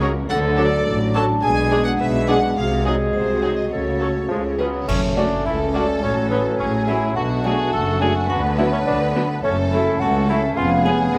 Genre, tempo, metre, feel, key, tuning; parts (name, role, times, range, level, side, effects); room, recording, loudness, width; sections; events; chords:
cinematic, playful, whimsical film cue; 105 BPM; 2/4; straight; F# minor; A4 = 440 Hz
rich studio violin section; melody; 0.0-10.9 s; C#4 to A#4; -35 LUFS; equal
clear clarinet; second line; 0.0-11.2 s; C#4 to B4; -30 LUFS; equal
mellow hollow silver concert flute; second line; 0.0-11.2 s; G#4 to D#6; -31 LUFS; equal
warm cor anglais; second line; 0.0-11.2 s; G#3 to A#4; -31 LUFS; equal
rich studio viola section; accompaniment; 0.0-10.9 s; F#3 to G#4; -31 LUFS; equal
warm bassoon; accompaniment; 0.0-11.2 s; E#3 to B3; -30 LUFS; equal
dark French horn section; sustained chords; 0.0-11.2 s; F#3 to F#4; -28 LUFS; equal
bright studio double bass section; bass; 0.0-11.2 s; E#1 to D2; -28 LUFS; equal
rich studio cello section; bass; 0.0-11.2 s; C#2 to D3; -28 LUFS; equal
vibraphone with medium mallets; melody; 0.3-11.2 s; G#4 to A5; -28 LUFS; equal
warm studio violin section; second line; 0.3-11.2 s; F#4 to A5; -30 LUFS; equal
cymbal swell, clash cymbals and concert bass drum; percussion; 2.6-6.0 s; -31 LUFS; equal
moderate concert hall reverb, RT60 2.2 s; -20 LUFS; mono
0.0-4.9 A section; 4.9-11.2 B section
band accent 4.9-5.5
0.3 D; 1.4 G#dim/B; 2.6 G#7/B#; 3.7 F#m/C#; 4.3 C#; 4.9 F#m; 6.0 F#m/A; 7.2 Bm7; 8.3 Bm/D; 9.4 F#m; 10.6 C#7/E#